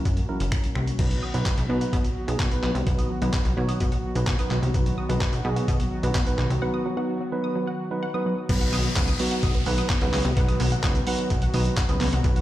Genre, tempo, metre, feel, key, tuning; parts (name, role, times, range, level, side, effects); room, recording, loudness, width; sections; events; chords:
dance-pop; 128 BPM; 4/4; straight; B major; A4 = 441 Hz
tine electric piano; accompaniment; 0.0-12.4 s; F#3 to C#5; -29 LUFS; right 2 dB; sidechain pumping
warm analog pad; sustained chords; 0.0-12.4 s; D#3 to F#4; -33 LUFS; left 2 dB; chorus, sidechain pumping
plucky analog bass; bass; 0.1-12.4 s; F#1 to B2; -26 LUFS; equal; sidechain pumping
trip hop sampler-style drum kit; drums; 0.1-12.4 s; crash cymbal, finger snaps, handclaps, hi-hat, kick drum; -25 LUFS; equal
wide unison pluck; arpeggios; 1.0-12.4 s; F#3 to D#6; -35 LUFS; equal; auto-pan, sidechain pumping, dub echo
downlifter; sound effects; 8.5-12.2 s; -34 LUFS; left 1 dB
light reverb; played on a big sound system in a bare room, stone room reverb; -22 LUFS; side -14 dB against mid
1.0-8.5 A section; 8.5-12.4 B section
break 6.6-8.5
0.0 F#7; 1.0 B